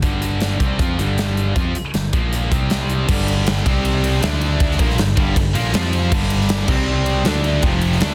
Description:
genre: hard rock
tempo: 158 BPM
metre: 4/4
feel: straight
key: unclear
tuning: A4 = 440 Hz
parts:
  - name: distorted electric guitar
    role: riff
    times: 0.0-8.1 s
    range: F2 to F4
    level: -27 LUFS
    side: equal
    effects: distortion
  - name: scooped high-gain guitar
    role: riff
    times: 0.0-8.1 s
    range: F2 to F4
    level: -27 LUFS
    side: equal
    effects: distortion
  - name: picked electric bass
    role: bass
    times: 0.0-8.1 s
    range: F1 to F2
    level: -23 LUFS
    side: equal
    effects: none
  - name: big rock drum kit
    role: drums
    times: 0.0-8.1 s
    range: crash cymbal, hi-hat, kick drum, ride cymbal, snare drum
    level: -23 LUFS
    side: equal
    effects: none
  - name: mellow tonewheel organ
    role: sustained chords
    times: 3.1-8.1 s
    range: F3 to G5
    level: -33 LUFS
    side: equal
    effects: slow rotary speaker
  - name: high-gain distorted guitar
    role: riff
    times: 3.1-8.1 s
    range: F2 to F4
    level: -28 LUFS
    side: equal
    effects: distortion
room: studio reverb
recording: dense, heavily limited modern master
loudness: -18 LUFS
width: mono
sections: 0.0-3.1 A section; 3.1-8.1 B section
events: none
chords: 0.0 G5; 2.1 Bb5; 2.5 C5; 3.1 G5; 3.7 C5; 4.2 D5; 4.8 G5; 5.7 F5; 6.1 G5; 6.7 C5; 7.3 D5; 7.6 F5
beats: | 0.02 0.40 0.79 1.17 | 1.55 1.94 2.32 2.70 | 3.08 3.46 3.84 4.22 | 4.60 4.98 5.36 5.74 | 6.12 6.50 6.88 7.26 | 7.64 8.02

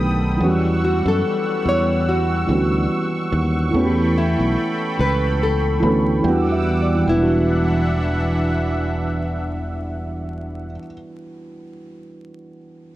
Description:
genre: hip hop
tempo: 72 BPM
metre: 4/4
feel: swing 56% on 16ths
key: E dorian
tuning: A4 = 443 Hz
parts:
  - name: felt-muted upright piano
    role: accompaniment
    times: 0.0-12.9 s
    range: D#3 to B5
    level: -22 LUFS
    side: right 1 dB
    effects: cassette tape, plate reverb
  - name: warm analog pad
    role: sustained chords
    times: 0.0-10.8 s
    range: E3 to E6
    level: -26 LUFS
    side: equal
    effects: chorus, tremolo, plate reverb
  - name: fingered electric bass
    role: bass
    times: 0.0-10.8 s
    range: E1 to F#2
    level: -21 LUFS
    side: equal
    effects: none
  - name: nylon-string guitar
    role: melody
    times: 0.8-10.8 s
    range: E4 to C#5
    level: -24 LUFS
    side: left 1 dB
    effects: plate reverb, analog delay
room: light reverb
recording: vinyl crackle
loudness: -17 LUFS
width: side -15 dB against mid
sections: 0.0-7.1 A section; 7.1-10.4 B section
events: none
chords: 0.4 Em69; 3.7 A9; 6.2 Em9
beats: | 0.40 1.23 2.07 2.90 | 3.73 4.57 5.40 6.23 | 7.07 7.90 8.73 9.57

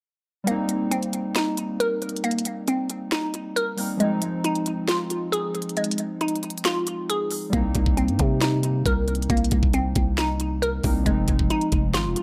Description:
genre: hip hop, trap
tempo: 136 BPM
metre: 4/4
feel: half-time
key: C minor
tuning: A4 = 440 Hz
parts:
  - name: warbly lo-fi synth keys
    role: accompaniment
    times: 0.4-12.2 s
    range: F3 to Eb4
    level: -31 LUFS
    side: equal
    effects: chorus, analog delay
  - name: glassy wavetable pluck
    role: arpeggios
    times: 0.5-12.2 s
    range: Ab3 to Bb4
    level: -28 LUFS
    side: equal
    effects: chorus, analog delay
  - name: trap drum kit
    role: drums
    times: 0.5-12.2 s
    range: hi-hat, kick drum, snare drum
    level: -28 LUFS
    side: equal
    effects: none
  - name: growling 808-style bass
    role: bass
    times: 7.5-12.2 s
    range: F1 to C3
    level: -27 LUFS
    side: equal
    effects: none
room: digital ambience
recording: echo-heavy mix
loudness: -24 LUFS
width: mono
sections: 0.5-12.2 A section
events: kick muted 0.5-7.5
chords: 0.5 Cm7; 4.0 Fm7; 7.5 Cm7; 11.1 Fm7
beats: | 0.47 0.92 1.36 1.80 | 2.24 2.68 3.12 3.56 | 4.00 4.44 4.88 5.33 | 5.77 6.21 6.65 7.09 | 7.53 7.97 8.41 8.86 | 9.30 9.74 10.18 10.62 | 11.06 11.50 11.94

